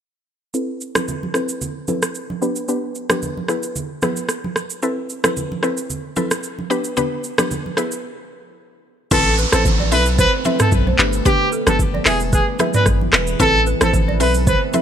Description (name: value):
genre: afrobeats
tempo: 112 BPM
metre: 4/4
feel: swing 55% on 16ths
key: A minor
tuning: A4 = 440 Hz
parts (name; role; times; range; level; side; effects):
- mallet-like synth pluck; accompaniment; 0.5-14.8 s; B3 to B4; -23 LUFS; left 2 dB; chorus, low-pass filter
- afro-pop drum kit; drums; 0.5-14.8 s; crash cymbal, handclaps, hi-hat, kick drum, rim click, shaker, toms; -19 LUFS; equal; overdrive
- congas; percussion; 1.0-14.8 s; none; -28 LUFS; right 4 dB; none
- bright trumpet; melody; 9.1-14.6 s; G4 to B4; -20 LUFS; equal; ping-pong delay
- deep dark ambient pad; sustained chords; 9.8-14.8 s; D3 to B4; -25 LUFS; right 1 dB; chorus, built-in reverb, sidechain pumping
- balafon; riff; 9.1-14.8 s; G4 to E5; -26 LUFS; right 4 dB; none
- punchy sub bass; bass; 9.1-14.5 s; E1 to B1; -20 LUFS; equal; none
- downlifter; sound effects; 9.1-13.4 s; none; -26 LUFS; right 2 dB; none
room: light reverb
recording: bright 1980s-style digital production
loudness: -16 LUFS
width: side -9 dB against mid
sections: 0.5-9.1 A section; 9.1-14.8 B section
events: filter sweep on synth pluck 0.5-9.1; break 8.0-9.1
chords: 0.5 Amadd9; 2.4 G; 3.5 E; 4.8 Amadd9; 6.7 G; 7.8 E; 9.1 Amadd9; 11.0 G; 12.1 E; 13.4 Amadd9